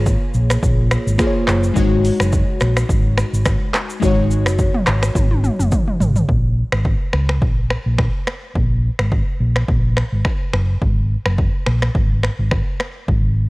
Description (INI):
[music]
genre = afrobeats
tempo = 106 BPM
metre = 4/4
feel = swing 55% on 16ths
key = unclear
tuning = A4 = 439 Hz
[part]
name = glassy digital keys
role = accompaniment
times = 0.0-6.3 s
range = Ab3 to Db5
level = -22 LUFS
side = left 2 dB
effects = chorus
[part]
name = hollow-body short-scale fingered electric bass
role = bass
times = 0.0-13.5 s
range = Gb1 to Db2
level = -17 LUFS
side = equal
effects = none
[part]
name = deep house drum kit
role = drums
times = 0.1-13.2 s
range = finger snaps, handclaps, hi-hat, kick drum, rim click, shaker, toms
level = -19 LUFS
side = equal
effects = overdrive
[sound]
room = little or no reverb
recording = worn, warbling old tape, cassette tape, warbly pitch drift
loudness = -15 LUFS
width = side -22 dB against mid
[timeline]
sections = 0.0-6.3 A section; 6.3-13.5 B section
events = drum fill 5.2-6.3; hi-hats muted 6.3-13.5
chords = 0.0 Bbm7; 1.8 Ab7sus4; 6.3 N.C.